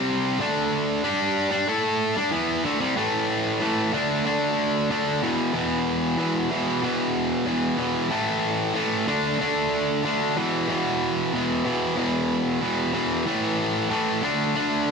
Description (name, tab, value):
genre	rock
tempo	93 BPM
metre	4/4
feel	straight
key	E minor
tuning	A4 = 439 Hz
part	distorted electric guitar	solo	0.0-14.9 s	E2 to A4	-22 LUFS	equal	overdrive
room	moderate large studio reverb, RT60 1.1 s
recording	none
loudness	-22 LUFS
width	side -5 dB against mid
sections	0.0-3.0 A section; 3.0-14.9 B section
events	none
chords	0.4 D5; 1.0 N.C.; 3.0 A5; 3.9 D5; 5.2 E5; 8.1 A5; 9.1 D5; 10.4 E5; 13.3 A5; 14.2 D5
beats	| 0.39 1.03 1.68 2.32 | 2.96 3.60 4.25 4.89 | 5.54 6.18 6.82 7.47 | 8.11 8.75 9.40 10.04 | 10.69 11.33 11.97 12.62 | 13.26 13.91 14.55